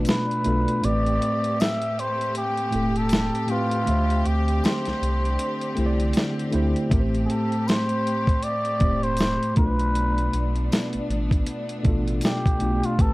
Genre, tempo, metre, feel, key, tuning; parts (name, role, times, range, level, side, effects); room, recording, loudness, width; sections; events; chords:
lo-fi hip hop; 79 BPM; 4/4; swing 59% on 16ths; A4 = 441 Hz
mellow tine electric piano; accompaniment; 0.0-13.1 s; A2 to E5; -26 LUFS; equal; medium stereo tremolo
clear studio string section; sustained chords; 0.0-13.1 s; D3 to G4; -32 LUFS; left 1 dB
soft dub sub bass; bass; 0.0-13.1 s; E1 to D2; -25 LUFS; equal
trumpet with cup mute; melody; 0.1-13.1 s; F4 to E5; -27 LUFS; equal; analog delay
dusty soul sampler-style drum kit; drums; 0.1-13.1 s; hi-hat, kick drum, snare drum; -23 LUFS; equal; overdrive
tambourine; percussion; 0.1-12.4 s; -45 LUFS; left 5 dB
moderate studio reverb, RT60 0.6 s; vinyl crackle; -21 LUFS; side -20 dB against mid
0.0-13.1 A section
break 0.0-6.9
0.0 Bm7b5; 0.8 Am9; 3.9 D7sus4; 6.9 Am7; 9.6 Bm7b5